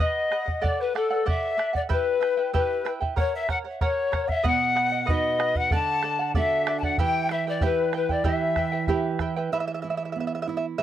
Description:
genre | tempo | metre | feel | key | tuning
andean folk, Andean ensemble | 95 BPM | 2/4 | straight | E dorian | A4 = 438 Hz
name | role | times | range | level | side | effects
breathy reedy polished pan flute | melody | 0.0-9.2 s | A4 to A5 | -26 LUFS | left 4 dB | tape echo
breathy bright large quena | second line | 0.0-9.2 s | A4 to A5 | -30 LUFS | left 5 dB | none
charango | accompaniment | 0.0-10.8 s | E4 to G5 | -30 LUFS | right 5 dB | none
bombo | percussion | 0.0-9.3 s | none | -27 LUFS | right 1 dB | none
nylon-string guitar | accompaniment | 4.5-10.8 s | B2 to B4 | -30 LUFS | right 6 dB | none
room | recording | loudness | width
light reverb | dry, close 1970s-style studio recording | -22 LUFS | side -11 dB against mid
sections
0.0-9.5 A section; 9.5-10.8 B section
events
charango solo 9.5-10.8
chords
0.0 B; 0.6 D; 1.9 Em; 3.2 F#; 4.5 B; 5.7 D; 7.0 Em; 9.5 E5

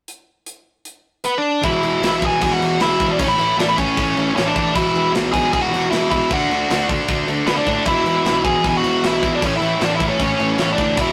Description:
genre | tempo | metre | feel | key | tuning
punk rock | 154 BPM | 4/4 | straight | unclear | A4 = 439 Hz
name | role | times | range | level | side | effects
tight metal drum kit | drums | 0.1-11.1 s | crash cymbal, hi-hat, kick drum, snare drum | -26 LUFS | equal | none
nasal lead guitar with a parked wah | melody | 1.2-11.1 s | B3 to G#5 | -21 LUFS | equal | overdrive
distorted electric guitar | riff | 1.6-11.1 s | E2 to D4 | -25 LUFS | equal | overdrive
tight distorted guitar | riff | 1.6-11.1 s | E2 to D4 | -26 LUFS | equal | distortion
fuzz picked electric bass | bass | 1.6-11.1 s | E1 to A2 | -30 LUFS | equal | overdrive
crunchy overdriven guitar | riff | 7.9-11.1 s | E2 to A3 | -30 LUFS | equal | none
room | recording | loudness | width
light reverb | rough rehearsal-room recording, tube saturation | -18 LUFS | mono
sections
0.1-1.6 A section; 1.6-11.1 B section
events
none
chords
0.1 N.C.; 1.6 E; 3.2 A; 4.7 E; 6.3 D; 7.9 E; 9.4 A

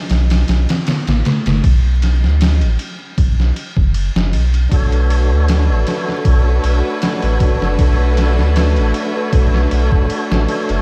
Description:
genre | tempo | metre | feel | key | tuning
trip hop | 78 BPM | 4/4 | swing 54% on 16ths | B minor | A4 = 440 Hz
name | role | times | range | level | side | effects
warm sub bass | bass | 0.1-10.8 s | F#1 to D2 | -16 LUFS | equal | none
trip hop sampler-style drum kit | drums | 0.1-10.8 s | kick drum, ride cymbal, snare drum | -20 LUFS | equal | overdrive, vintage 12-bit sampler grit
tonewheel organ | accompaniment | 4.7-10.8 s | D4 to C#5 | -24 LUFS | equal | overdrive, fast rotary speaker, harmonic tremolo, vintage 12-bit sampler grit, tape echo
warm chamber violin section | sustained chords | 4.7-10.8 s | A3 to B4 | -24 LUFS | equal | none
room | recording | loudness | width
light reverb, digital ambience | vinyl crackle | -15 LUFS | mono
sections
0.0-10.8 A section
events
none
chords
0.0 Bm7

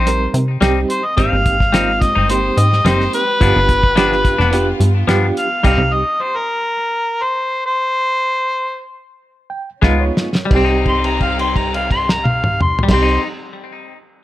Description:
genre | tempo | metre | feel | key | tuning
straight-eighth soul blues | 86-108 BPM | 4/4 | straight | C minor | A4 = 440 Hz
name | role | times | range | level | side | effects
mellow harmonica | melody | 0.0-13.2 s | Bb4 to C6 | -17 LUFS | left 1 dB | overdrive
clean electric guitar | stabs | 0.0-5.8, 9.8-13.3 s | F3 to F4 | -22 LUFS | left 5 dB | digital delay
plucky analog bass | bass | 0.0-6.0, 9.8-13.2 s | F1 to C3 | -18 LUFS | equal | none
bright reed electric piano | accompaniment | 0.1-6.0, 9.5-13.2 s | G3 to G5 | -21 LUFS | right 3 dB | fast tremolo
cloth-damped thuddy drum kit | drums | 0.1-5.8, 9.8-13.1 s | crash cymbal, hi-hat, kick drum, snare drum, toms | -18 LUFS | equal | none
warm studio string section | sustained chords | 1.2-6.1, 9.8-13.2 s | Ab3 to G4 | -28 LUFS | left 1 dB | none
room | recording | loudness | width
light reverb | none | -13 LUFS | side -15 dB against mid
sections
0.0-10.5 A section; 10.5-13.3 B section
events
harmonica solo 0.0-10.5; slowing down 5.6-10.5; stop 5.6-9.8; reed electric piano fill 9.2-10.5; drum fill 9.8-10.5; held note 10.5-12.9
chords
0.0 Cm; 1.2 Abmaj7; 3.4 G7; 5.6 Cm; 9.8 Db7; 10.5 Cm

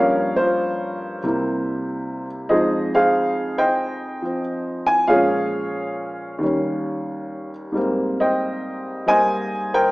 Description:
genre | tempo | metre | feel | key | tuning
solo jazz | 92 BPM | 4/4 | swing 68% on 8ths, rubato | unclear | A4 = 440 Hz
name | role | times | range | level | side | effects
warm upright piano | solo | 0.0-9.9 s | Eb2 to Ab5 | -19 LUFS | equal | none
room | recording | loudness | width
wet scoring stage reverb, RT60 1.4 s | small speaker sound | -19 LUFS | side -20 dB against mid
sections
0.0-9.9 A section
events
none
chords
0.0 Gm7b5; 1.2 C7; 2.5 Fm7; 5.1 Bbm7; 6.4 Eb7; 7.8 Abmaj9

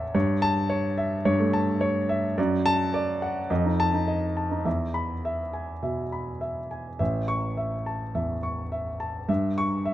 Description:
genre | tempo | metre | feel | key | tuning
classical, virtuoso piano study | 105 BPM | 4/4 | rubato | unclear | A4 = 440 Hz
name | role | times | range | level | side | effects
warm grand piano | solo | 0.0-9.9 s | A1 to C#6 | -24 LUFS | equal | none
room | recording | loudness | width
light reverb | close, detailed microphones | -24 LUFS | side -13 dB against mid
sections
0.0-9.9 A section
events
none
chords
0.1 A7/G; 2.4 D/F#; 3.5 F7; 4.7 E; 7.0 A; 9.3 A7/G (rootless)

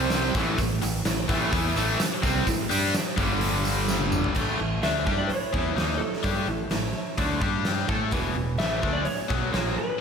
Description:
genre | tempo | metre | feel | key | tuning
classic rock | 128 BPM | 4/4 | straight | unclear | A4 = 438 Hz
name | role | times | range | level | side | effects
overdriven electric guitar | riff | 0.0-9.8 s | E2 to A4 | -29 LUFS | left 9 dB | slapback echo
overdriven semi-hollow guitar | riff | 0.0-9.8 s | E2 to A4 | -31 LUFS | right 8 dB | harmonic tremolo
tight distorted guitar | riff | 0.0-4.4 s | G2 to G4 | -31 LUFS | right 2 dB | distortion, slapback echo
growling fingered electric bass | bass | 0.0-9.8 s | E1 to A2 | -30 LUFS | equal | overdrive
big rock drum kit | drums | 0.1-9.6 s | crash cymbal, hi-hat, kick drum, snare drum, toms | -28 LUFS | right 1 dB | none
tambourine | percussion | 0.1-4.2 s | none | -41 LUFS | right 5 dB | none
picked swing-style acoustic guitar | accompaniment | 4.3-10.0 s | E2 to D5 | -37 LUFS | right 3 dB | slapback echo
electric slide guitar | melody | 4.8-10.0 s | A4 to E5 | -31 LUFS | equal | slapback echo, digital delay
room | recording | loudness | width
moderate lush hall reverb, RT60 2.1 s | big arena sound | -23 LUFS | side -6 dB against mid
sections
0.0-4.4 A section; 4.4-10.0 B section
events
drum fill 3.9-4.4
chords
0.4 A5; 3.2 G5; 4.4 A; 7.4 G5; 7.9 A; 8.1 Eadd9

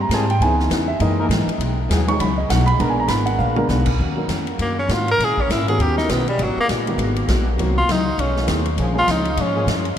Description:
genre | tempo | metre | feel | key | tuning
jazz, big band swing | 201 BPM | 4/4 | swing 60% on 8ths | Eb minor | A4 = 442 Hz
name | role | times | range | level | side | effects
warm grand piano | accompaniment | 0.0-9.1 s | Eb3 to Db6 | -23 LUFS | right 2 dB | none
upright bass | bass | 0.0-10.0 s | Ab1 to Bb2 | -21 LUFS | equal | none
picked steel-string acoustic guitar | accompaniment | 0.1-9.9 s | Gb2 to Bb4 | -26 LUFS | left 4 dB | none
warm trombone section | sustained chords | 0.1-3.6, 8.8-9.6 s | Fb3 to Bb4 | -31 LUFS | left 1 dB | none
swinging big-band drum kit | drums | 0.1-9.9 s | crash cymbal, hi-hat, kick drum, ride cymbal, snare drum, toms | -26 LUFS | equal | none
bright tenor saxophone | melody | 4.6-9.7 s | Gb3 to Bb4 | -21 LUFS | equal | none
room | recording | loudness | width
moderate cathedral reverb, RT60 6.9 s | in a vast, echoing space | -17 LUFS | side -10 dB against mid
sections
0.0-4.0 A section; 4.0-10.0 A section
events
grand piano solo 0.0-4.0; drum fill 3.4; tenor saxophone solo 4.0-10.0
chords
0.4 Dbm7; 1.0 Gb13; 1.6 B6; 2.8 Bb7b9; 4.0 Ebm7; 5.2 Bbm7b5; 5.8 Eb7alt; 6.4 Abm9; 7.6 Cm7b5; 8.2 B13; 8.8 Bbm7

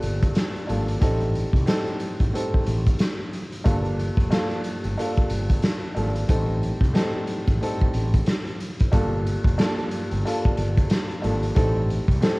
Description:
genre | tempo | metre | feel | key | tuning
hip hop, boom-bap hip-hop | 91 BPM | 4/4 | swing 60% on 16ths | G minor | A4 = 437 Hz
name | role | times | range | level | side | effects
dark upright piano | accompaniment | 0.0-12.4 s | G2 to A4 | -27 LUFS | equal | cassette tape, high-pass filter, low-pass filter
mellow fretless electric bass | bass | 0.0-12.2 s | F1 to C2 | -25 LUFS | equal | none
raw garage drum kit | drums | 0.0-12.4 s | hi-hat, kick drum, snare drum | -23 LUFS | equal | cassette tape
room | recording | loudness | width
little or no reverb | home recording on cassette, vinyl crackle | -20 LUFS | side -24 dB against mid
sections
0.0-8.9 A section; 8.9-12.4 B section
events
none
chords
0.0 Gm9; 1.0 Am7b5; 3.7 Gm9; 6.3 Am7b5; 8.9 Gm9; 11.6 Am7b5

